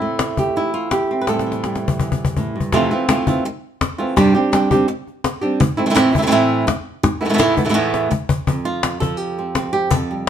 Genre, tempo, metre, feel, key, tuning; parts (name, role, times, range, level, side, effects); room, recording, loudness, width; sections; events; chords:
flamenco; 167 BPM; 4/4; straight; A minor; A4 = 440 Hz
flamenco guitar; melody; 0.0-10.3 s; E2 to B4; -17 LUFS; right 2 dB
cajon; percussion; 0.2-10.3 s; -20 LUFS; left 4 dB
moderate studio reverb, RT60 0.7 s; band playing live in one room; -16 LUFS; side -9 dB against mid
0.0-2.7 A section; 2.7-8.5 B section; 8.5-10.3 C section
drum fill 1.3-2.7, 7.9-8.5
0.0 Am7; 2.7 Fmaj7; 4.2 Gsus4; 5.6 Am; 7.0 Esus4; 8.5 Fadd9